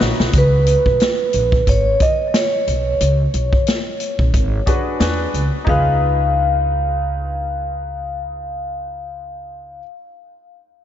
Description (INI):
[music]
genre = hip hop, jazz-hop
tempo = 90 BPM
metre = 4/4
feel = swing 57% on 16ths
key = unclear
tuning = A4 = 441 Hz
[part]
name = clear baby grand piano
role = accompaniment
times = 0.0-0.3, 4.7-9.8 s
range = D4 to B4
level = -25 LUFS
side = left 2 dB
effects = analog chorus
[part]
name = upright bass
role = bass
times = 0.0-9.8 s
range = G#1 to E2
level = -19 LUFS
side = equal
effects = none
[part]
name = vintage drum kit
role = drums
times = 0.0-5.8 s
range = hi-hat, kick drum, snare drum, toms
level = -19 LUFS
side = equal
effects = none
[part]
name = vibraphone with soft mallets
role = melody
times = 0.4-9.8 s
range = B4 to E#5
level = -20 LUFS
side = equal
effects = tape echo
[sound]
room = moderate huge ambient reverb, RT60 4.7 s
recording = dreamy mix soaked in reverb, nothing above 7.6 kHz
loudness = -15 LUFS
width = side -10 dB against mid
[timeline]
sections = 0.3-5.7 A section; 5.7-8.3 B section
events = drum fill 0.0-0.3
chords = 0.3 C#5; 5.0 E9; 5.7 C#9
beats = | 0.33 1.00 1.67 2.33 | 3.00 3.67 4.33 5.00 | 5.67 6.33 7.00 7.67